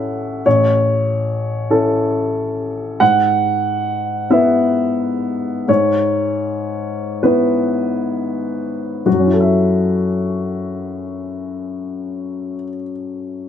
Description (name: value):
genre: classical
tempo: 31-48 BPM (dotted quarters)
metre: 6/8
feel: rubato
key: F# minor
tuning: A4 = 440 Hz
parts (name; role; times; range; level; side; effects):
- warm upright piano; accompaniment; 0.0-13.5 s; A1 to F#5; -16 LUFS; left 1 dB; none
room: moderate large studio reverb, RT60 1.1 s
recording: none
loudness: -15 LUFS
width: side -9 dB against mid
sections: 0.0-9.1 A section; 9.1-12.7 B section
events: slowing down 1.7-9.1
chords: 0.0 A; 3.0 E/G#; 9.1 F#m7